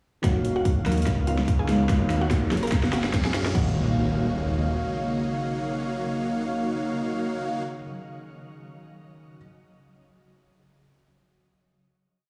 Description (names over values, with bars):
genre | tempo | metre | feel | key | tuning
future bass | 145 BPM | 4/4 | swing 55% on 16ths, half-time | Eb minor | A4 = 440 Hz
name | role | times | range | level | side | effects
mallet-like synth pluck | melody | 0.2-7.8 s | F4 to Bb5 | -36 LUFS | equal | chorus, cassette tape, sidechain pumping, tape echo
felt-muted upright piano | accompaniment | 0.2-9.4 s | Db3 to Eb5 | -36 LUFS | equal | sidechain pumping
shimmering ambient pad | sustained chords | 1.3-7.6 s | Bb2 to F5 | -40 LUFS | equal | chorus, built-in reverb, sidechain pumping
airy dreamy lead | arpeggios | 0.2-7.6 s | F5 | -41 LUFS | equal | chorus, sidechain pumping
supersaw chords | riff | 0.2-7.6 s | Bb3 to F5 | -32 LUFS | equal | sidechain pumping, low-pass filter
detuned saw bass | bass | 0.2-4.8 s | Eb1 to Gb2 | -29 LUFS | equal | chorus, sidechain pumping
dubstep drum kit | drums | 0.2-3.6 s | crash cymbal, hi-hat, snare drum | -31 LUFS | equal | none
electronic kick drum | drums | 0.2-3.6 s | none | -26 LUFS | equal | none
riser and impact | sound effects | 1.6-7.8 s | none | -38 LUFS | equal | none
room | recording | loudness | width
light reverb, digital ambience | played on a big sound system in a bare room, large studio reverb, studio reverb | -25 LUFS | mono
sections
0.2-3.5 build; 3.5-6.9 final chord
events
build-up 0.2-3.5; drum fill 0.2-3.5; filter sweep on supersaw synth 0.2-3.5; riser 1.6-3.5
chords
0.2 Ebm9; 1.1 Db13; 1.9 Bmaj9#11/D#; 2.5 Gbmaj9; 3.5 Ebm9